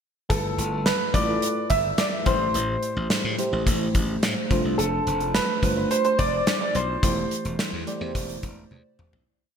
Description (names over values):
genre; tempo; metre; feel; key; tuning
1980s-style pop; 107 BPM; 4/4; straight; C major; A4 = 440 Hz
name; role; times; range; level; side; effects
warm concert grand piano; melody; 0.3-8.7 s; A4 to E5; -25 LUFS; right 1 dB; lush chorus, digital delay
FM electric piano with soft pad layer; accompaniment; 0.3-9.3 s; G2 to D5; -29 LUFS; right 1 dB; chorus
glassy slap bass; bass; 0.3-9.2 s; E1 to A2; -29 LUFS; left 1 dB; none
gated 80s drum kit; drums; 0.3-9.3 s; hi-hat, kick drum, snare drum, toms; -26 LUFS; equal; gated reverb
room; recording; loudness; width
moderate plate reverb, RT60 2.3 s; bright 1980s-style digital production; -21 LUFS; side -7 dB against mid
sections
0.3-9.3 verse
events
fade-out 7.0-9.3; drum fill 8.7-9.3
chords
0.3 G13; 2.3 Am7; 4.5 F6; 7.0 C6/E